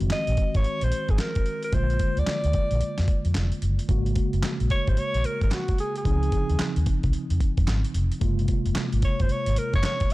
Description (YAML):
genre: R&B, new jack swing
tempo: 111 BPM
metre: 4/4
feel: swing 64% on 16ths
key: unclear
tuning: A4 = 440 Hz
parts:
  - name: mellow tine electric piano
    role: accompaniment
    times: 0.0-10.1 s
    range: C3 to Gb4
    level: -30 LUFS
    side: equal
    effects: medium stereo tremolo
  - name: vintage muted fingered electric bass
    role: bass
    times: 0.0-9.8 s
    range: F1 to F2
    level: -24 LUFS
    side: equal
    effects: none
  - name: dusty soul sampler-style drum kit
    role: drums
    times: 0.0-10.1 s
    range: handclaps, hi-hat, kick drum, snare drum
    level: -26 LUFS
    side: equal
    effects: overdrive
  - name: breathy alto saxophone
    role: melody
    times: 0.1-10.1 s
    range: Gb4 to Eb5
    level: -29 LUFS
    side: equal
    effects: none
  - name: group handclap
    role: percussion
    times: 4.4-10.0 s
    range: none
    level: -42 LUFS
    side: right 6 dB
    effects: none
room: digital ambience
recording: dark, warm production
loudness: -22 LUFS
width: side -18 dB against mid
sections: 0.0-3.9 A section; 3.9-10.1 B section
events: none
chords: 0.0 Ab7; 1.7 Bb7; 3.9 Ab9sus4; 6.1 Dbmaj9; 8.2 Gbmaj9#11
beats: 0.11 0.65 1.19 | 1.73 2.27 2.81 3.35 | 3.89 4.43 4.97 5.51 | 6.05 6.59 7.13 7.67 | 8.22 8.76 9.30 9.84